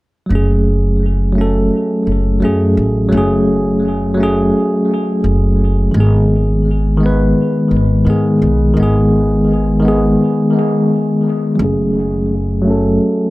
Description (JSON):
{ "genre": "trip hop", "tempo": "85 BPM", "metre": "4/4", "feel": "swing 56% on 16ths", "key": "F# dorian", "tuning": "A4 = 441 Hz", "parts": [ { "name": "bell-like tine electric piano", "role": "accompaniment", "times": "0.3-13.3 s", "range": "D#3 to B4", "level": "-13 LUFS", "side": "equal", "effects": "harmonic tremolo, low-pass filter, tape echo" }, { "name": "upright bass", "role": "bass", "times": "0.3-13.0 s", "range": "F#1 to G#2", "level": "-15 LUFS", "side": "equal", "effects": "tube saturation" } ], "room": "moderate spring reverb, RT60 1.3 s", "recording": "echo-heavy mix", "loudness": "-12 LUFS", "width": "side -19 dB against mid", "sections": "0.3-11.6 A section; 11.6-13.3 B section", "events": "break 10.2-11.6; filter sweep on tine electric piano 11.6-13.3", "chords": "0.3 F#madd9; 5.9 G#m; 11.6 F#madd9" }